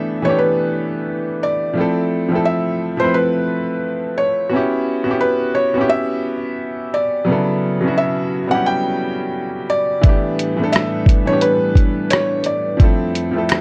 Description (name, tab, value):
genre	lo-fi hip hop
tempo	87 BPM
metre	4/4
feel	swing 58% on 16ths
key	E dorian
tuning	A4 = 439 Hz
part	felt-muted upright piano	melody	0.0-12.8 s	B4 to G5	-22 LUFS	equal	none
part	bright upright piano	accompaniment	0.0-13.6 s	C#3 to B4	-22 LUFS	equal	none
part	warbly tape-like pad	sustained chords	10.0-13.6 s	F2 to B4	-27 LUFS	equal	chorus, built-in reverb
part	lo-fi sampler-style drum kit	drums	10.0-13.6 s	hi-hat, kick drum, rim click	-15 LUFS	equal	none
part	finger snaps	percussion	10.7-13.6 s	none	-33 LUFS	equal	none
room	moderate studio reverb, RT60 0.5 s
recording	cassette tape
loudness	-18 LUFS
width	mono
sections	0.0-13.6 A section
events	none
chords	0.0 A9sus4; 1.8 Fmaj7; 4.5 Em69; 10.0 A9sus4; 12.8 Fmaj7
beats	0.39 1.07 | 1.76 2.45 3.14 3.83 | 4.52 5.21 5.90 6.59 | 7.28 7.97 8.66 9.35 | 10.04 10.73 11.42 12.11 | 12.80 13.49